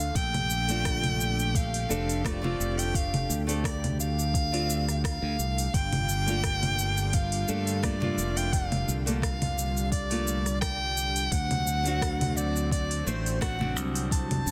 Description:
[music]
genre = sunset chillout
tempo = 86 BPM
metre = 4/4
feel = swing 54% on 16ths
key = Bb major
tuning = A4 = 439 Hz
[part]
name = clear soprano saxophone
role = melody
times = 0.0-14.5 s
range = C5 to A5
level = -34 LUFS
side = equal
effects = digital delay
[part]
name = lush unison pad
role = sustained chords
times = 0.0-14.5 s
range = D3 to G4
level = -40 LUFS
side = equal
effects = chorus
[part]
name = modern bright fingered electric bass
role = bass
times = 0.0-14.5 s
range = F1 to G2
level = -33 LUFS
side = equal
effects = none
[part]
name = smooth R&B drum kit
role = drums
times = 0.0-14.5 s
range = congas, hi-hat, rim click, shaker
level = -35 LUFS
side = equal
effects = soft clipping on snare
[part]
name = electronic kick drum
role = drums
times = 0.2-14.3 s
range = none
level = -32 LUFS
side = equal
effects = none
[part]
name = nylon-string guitar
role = accompaniment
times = 0.7-14.5 s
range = A3 to C5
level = -37 LUFS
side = equal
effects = digital delay
[sound]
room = light reverb, digital ambience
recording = dense, heavily limited modern master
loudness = -28 LUFS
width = mono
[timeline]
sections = 0.0-14.5 A section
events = none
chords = 0.0 Bbmaj7; 11.3 D7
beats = | 0.16 0.86 1.55 2.25 | 2.95 3.65 4.35 5.04 | 5.74 6.44 7.14 7.83 | 8.53 9.23 9.93 10.62 | 11.32 12.02 12.72 13.42 | 14.11

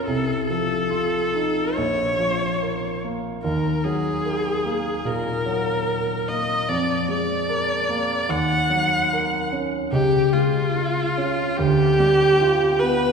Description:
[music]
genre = classical, romantic duo for viola and grand piano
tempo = 73 BPM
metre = 4/4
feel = rubato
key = unclear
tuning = A4 = 440 Hz
[part]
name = clear viola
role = melody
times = 0.0-13.1 s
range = F4 to Gb5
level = -22 LUFS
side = equal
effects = none
[part]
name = warm baby grand piano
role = accompaniment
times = 0.0-13.1 s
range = Bb1 to Bb4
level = -23 LUFS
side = equal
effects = none
[sound]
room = wet concert hall reverb, RT60 2.5 s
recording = heard from further back in the room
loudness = -19 LUFS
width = side -5 dB against mid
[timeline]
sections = 0.0-13.1 A section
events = none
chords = 0.1 F7/C; 1.8 Bbm; 3.4 Ebm; 6.7 Bb7/F; 8.3 Ebm7; 9.9 Db; 11.6 G7/D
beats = | 0.06 0.91 1.75 2.59 | 3.43 4.24 5.06 5.89 | 6.70 7.50 8.31 9.12 | 9.93 10.74 11.57 12.39

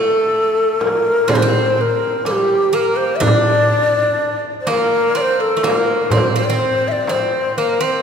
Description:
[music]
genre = Turkish makam ensemble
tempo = 124 BPM (eighths)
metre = 10/8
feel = straight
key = unclear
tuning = A4 = 440 Hz
[part]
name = breathy mellow ney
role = melody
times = 0.0-8.0 s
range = G4 to E5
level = -16 LUFS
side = left 1 dB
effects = none
[part]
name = Greek bouzouki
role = second line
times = 0.0-8.0 s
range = G3 to D4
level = -22 LUFS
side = right 2 dB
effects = none
[part]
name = frame drum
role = percussion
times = 0.8-7.3 s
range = none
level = -22 LUFS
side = right 2 dB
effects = none
[part]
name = darbuka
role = percussion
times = 3.2-7.7 s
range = none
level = -25 LUFS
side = equal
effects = none
[sound]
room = wet church reverb, RT60 3.2 s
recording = recorded in a church or concert hall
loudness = -14 LUFS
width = side -7 dB against mid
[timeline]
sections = 0.0-8.0 A section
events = none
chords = none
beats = 0.32 0.80 1.28 1.77 2.25 2.73 | 3.22 3.70 4.18 4.67 5.15 5.63 6.11 6.60 7.08 7.56

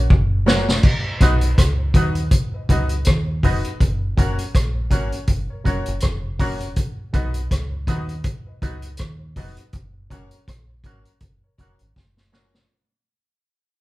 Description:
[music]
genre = roots reggae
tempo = 81 BPM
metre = 4/4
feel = swing 56% on 16ths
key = F# major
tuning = A4 = 443 Hz
[part]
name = deep dub fingered electric bass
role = bass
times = 0.0-12.7 s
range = E#1 to D#2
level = -23 LUFS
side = equal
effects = none
[part]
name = vintage drum kit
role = drums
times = 0.1-12.7 s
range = crash cymbal, hi-hat, kick drum, rim click, snare drum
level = -19 LUFS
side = equal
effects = none
[part]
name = electric guitar with an envelope filter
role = accompaniment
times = 0.5-12.5 s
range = F#3 to F#4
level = -29 LUFS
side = right 4 dB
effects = none
[part]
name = bright upright piano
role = stabs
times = 0.5-12.6 s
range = C#4 to D#5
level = -29 LUFS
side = left 3 dB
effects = none
[sound]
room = moderate large studio reverb, RT60 1.0 s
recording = band playing live in one room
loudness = -18 LUFS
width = side -18 dB against mid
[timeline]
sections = 0.8-12.7 A section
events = drum fill 0.1-0.8, 12.0-12.7; fade-out 0.8-12.7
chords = 0.0 F#; 0.8 B; 3.8 F#; 6.8 B; 9.7 F#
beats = 0.10 | 0.84 1.58 2.32 3.06 | 3.80 4.54 5.28 6.02 | 6.77 7.51 8.25 8.99 | 9.73 10.47 11.21 11.96

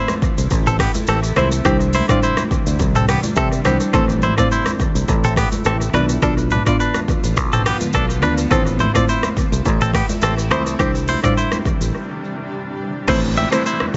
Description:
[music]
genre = afrobeats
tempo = 105 BPM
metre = 4/4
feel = swing 55% on 16ths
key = A minor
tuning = A4 = 439 Hz
[part]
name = granular cloud pad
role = sustained chords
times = 0.0-14.0 s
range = C3 to F4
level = -30 LUFS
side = equal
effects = built-in reverb
[part]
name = direct-recorded clean electric guitar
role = riff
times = 0.0-13.9 s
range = B3 to E5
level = -24 LUFS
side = equal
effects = analog delay
[part]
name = afro-pop drum kit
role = drums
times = 0.1-14.0 s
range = crash cymbal, hi-hat, kick drum, rim click, shaker, toms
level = -23 LUFS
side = equal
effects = overdrive, analog delay
[part]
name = congas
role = percussion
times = 0.1-14.0 s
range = none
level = -30 LUFS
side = equal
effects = none
[part]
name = fingered electric bass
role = bass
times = 0.4-13.4 s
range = A1 to C3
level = -22 LUFS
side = equal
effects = none
[part]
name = buzzing marimba with medium hard mallets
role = accompaniment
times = 1.4-13.7 s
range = G3 to D5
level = -24 LUFS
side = equal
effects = none
[part]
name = downlifter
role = sound effects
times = 13.1-14.0 s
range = none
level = -32 LUFS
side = equal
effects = none
[sound]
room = light reverb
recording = echo-heavy mix, nothing above 7.8 kHz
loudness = -18 LUFS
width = mono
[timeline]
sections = 0.0-13.1 A section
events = break 11.9-13.1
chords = 0.0 Am; 1.7 Cadd9; 3.9 Am; 5.9 Bdim; 8.5 Am; 10.8 Cadd9; 13.1 Am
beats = 0.51 1.08 | 1.65 2.22 2.79 3.37 | 3.94 4.51 5.08 5.65 | 6.22 6.79 7.37 7.94 | 8.51 9.08 9.65 10.22 | 10.79 11.37 11.94 12.51 | 13.08 13.65

